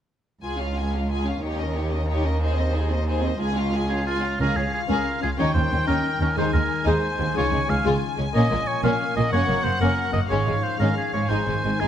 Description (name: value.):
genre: cinematic.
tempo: 122 BPM (dotted quarters).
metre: 12/8.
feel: straight.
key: Db major.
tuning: A4 = 440 Hz.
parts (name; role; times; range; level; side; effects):
rich symphonic violin section; melody; 0.4-11.9 s; C5 to Ab5; -31 LUFS; left 4 dB; none.
dark symphonic viola section; accompaniment; 0.4-11.9 s; Ab3 to F4; -29 LUFS; equal; none.
rich symphonic cello section; bass; 0.4-11.9 s; Db2 to Bb2; -26 LUFS; right 1 dB; none.
warm symphonic violin section; second line; 0.5-11.9 s; Ab3 to C5; -31 LUFS; left 2 dB; none.
clear oboe; second line; 3.9-11.9 s; F4 to F5; -26 LUFS; right 1 dB; none.
concert harp; arpeggios; 4.4-11.9 s; Gb2 to Eb5; -32 LUFS; left 10 dB; none.
warm symphonic double bass section; bass; 4.4-11.9 s; Gb1 to Eb2; -27 LUFS; right 2 dB; none.
timpani; percussion; 4.4-4.9 s; Db3; -34 LUFS; right 1 dB; none.
room: light reverb.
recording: close, detailed microphones.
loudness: -21 LUFS.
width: side -10 dB against mid.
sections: 0.4-4.4 A section; 4.4-11.9 B section.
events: none.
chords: 0.4 Db; 1.4 Eb7; 2.4 Ab/Eb; 3.4 Db; 5.4 Eb7; 6.4 Ab/Eb; 7.4 Db; 8.3 Bbm7; 9.3 Gb; 10.3 Db/Ab; 11.3 Ab.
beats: | 0.44 0.93 1.43 1.92 | 2.41 2.90 3.39 3.89 | 4.40 4.90 5.39 5.89 | 6.38 6.87 7.37 7.86 | 8.35 8.84 9.32 9.81 | 10.30 10.79 11.30 11.80.